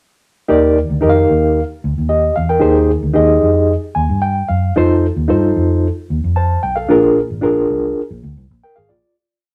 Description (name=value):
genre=uptempo 1960s-style soul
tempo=112 BPM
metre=4/4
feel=straight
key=Eb major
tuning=A4 = 440 Hz
part: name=reed electric piano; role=accompaniment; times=0.5-9.2 s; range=Bb2 to A5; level=-16 LUFS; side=equal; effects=fast tremolo
part: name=vintage muted fingered electric bass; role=bass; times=0.5-9.0 s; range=Ab1 to G2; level=-20 LUFS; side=equal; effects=none
room=wet studio reverb, RT60 0.6 s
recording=none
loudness=-15 LUFS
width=mono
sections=0.5-9.0 A section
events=reed electric piano fill 3.7-4.8; fade-out 6.9-9.0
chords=0.5 Ebmaj7; 2.6 Abmaj7; 4.8 F7; 6.9 Bb7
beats=| 0.49 1.02 1.55 2.09 | 2.62 3.16 3.69 4.23 | 4.76 5.30 5.83 6.37 | 6.90 7.44 7.97 8.50